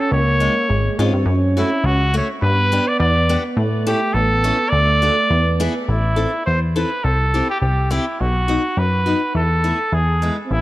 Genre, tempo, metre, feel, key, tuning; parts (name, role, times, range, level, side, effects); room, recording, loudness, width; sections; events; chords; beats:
alpine folk, alpine dance band; 104 BPM; 2/4; straight; A minor from 5.9 s; A4 = 440 Hz
warm trumpet; melody; 0.0-10.6 s; E4 to D5; -20 LUFS; equal; tape echo
mellow euphonium; second line; 0.0-5.9, 10.5-10.6 s; G#3 to C#4; -23 LUFS; right 3 dB; tape echo
plucky analog bass; bass; 0.1-10.6 s; G#1 to A2; -18 LUFS; equal
picked steel-string acoustic guitar; accompaniment; 0.4-10.4 s; G#3 to A4; -26 LUFS; left 3 dB
light reverb, small room ambience; -15 LUFS; side -16 dB against mid
0.0-5.9 A section; 5.9-10.6 B section
0.1 C#; 1.3 F#m; 2.4 G; 3.6 A; 4.7 D; 5.3 E7; 5.9 Am; 7.0 C; 8.2 B; 9.4 Esus4; 9.9 E
| 0.10 0.69 | 1.26 1.84 | 2.42 2.99 | 3.57 4.14 | 4.72 5.30 | 5.89 6.47 | 7.05 7.62 | 8.20 8.78 | 9.35 9.93 | 10.51